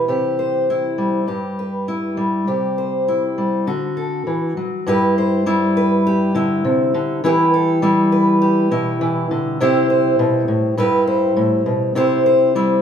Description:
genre	folk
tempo	101 BPM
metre	4/4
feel	straight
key	G major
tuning	A4 = 439 Hz
part	fingerpicked steel-string acoustic guitar	solo	0.0-12.8 s	G2 to C5	-15 LUFS	equal	none
room	wet large studio reverb, RT60 1.4 s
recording	band playing live in one room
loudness	-15 LUFS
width	side -8 dB against mid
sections	0.0-4.9 A section; 4.9-12.8 B section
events	none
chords	0.1 C; 1.3 G6; 2.5 C; 3.7 D; 4.9 G6; 7.2 Em; 9.6 C; 10.8 G6; 12.0 C

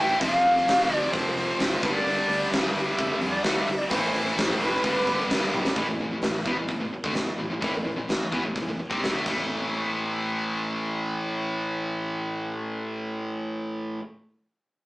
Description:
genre	hard rock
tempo	129 BPM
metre	4/4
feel	straight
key	A minor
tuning	A4 = 440 Hz
part	breathy shakuhachi	melody	0.0-5.5 s	B4 to G5	-26 LUFS	equal	none
part	distorted electric guitar	riff	0.0-14.0 s	F2 to C4	-29 LUFS	left 1 dB	overdrive
part	high-gain distorted guitar	riff	0.0-14.0 s	F2 to C4	-33 LUFS	right 2 dB	distortion
part	scooped high-gain guitar	riff	0.0-5.8 s	G2 to F4	-34 LUFS	equal	none
part	fingered electric bass	bass	0.0-14.0 s	F1 to F2	-39 LUFS	equal	none
part	huge arena drum kit	drums	0.2-9.4 s	crash cymbal, hi-hat, kick drum, snare drum, toms	-28 LUFS	equal	none
room	wet studio reverb, RT60 0.6 s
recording	rough rehearsal-room recording, warm saturation, small speaker sound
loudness	-24 LUFS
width	side -20 dB against mid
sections	0.0-5.8 A section; 5.8-9.5 B section; 9.5-13.2 C section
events	drum fill 5.5, 9.2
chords	0.2 F; 1.8 G; 3.9 Am; 4.8 G; 5.8 Am; 9.2 A5

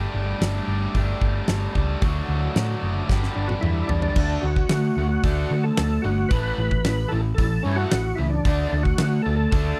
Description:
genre	classic rock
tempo	112 BPM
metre	4/4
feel	straight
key	unclear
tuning	A4 = 440 Hz
part	raw garage guitar	riff	0.0-9.8 s	G2 to G4	-32 LUFS	equal	overdrive
part	tight distorted guitar	riff	0.0-9.8 s	G2 to G4	-33 LUFS	equal	distortion
part	hollow-body short-scale picked electric bass	bass	0.0-9.7 s	F#1 to D3	-27 LUFS	equal	none
part	huge arena drum kit	drums	0.4-9.7 s	crash cymbal, hi-hat, kick drum, snare drum, toms	-26 LUFS	equal	none
part	overdriven tonewheel organ	melody	3.4-9.8 s	C#4 to B4	-30 LUFS	equal	slow rotary speaker, chorus vibrato
room	little or no reverb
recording	dry, close 1970s-style studio recording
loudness	-23 LUFS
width	mono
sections	0.0-4.2 A section; 4.2-9.8 B section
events	drum fill 3.1-4.2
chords	0.0 Gsus2; 2.0 D; 3.1 G; 4.2 D; 6.3 A5; 8.5 D5

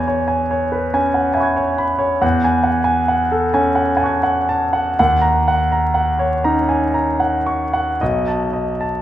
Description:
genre	classical, impressionist solo piano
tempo	36-48 BPM (dotted quarters)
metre	6/8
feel	rubato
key	unclear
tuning	A4 = 441 Hz
part	warm concert grand piano	solo	0.0-9.0 s	Cb2 to G#6	-15 LUFS	equal	none
room	wet recital hall reverb, RT60 1.7 s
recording	minimal, uncompressed stereo recording, vinyl crackle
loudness	-15 LUFS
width	side -12 dB against mid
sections	0.0-9.0 A section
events	none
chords	0.0 E6; 2.2 F#m9/E; 5.0 Ebm7; 8.0 Cb7

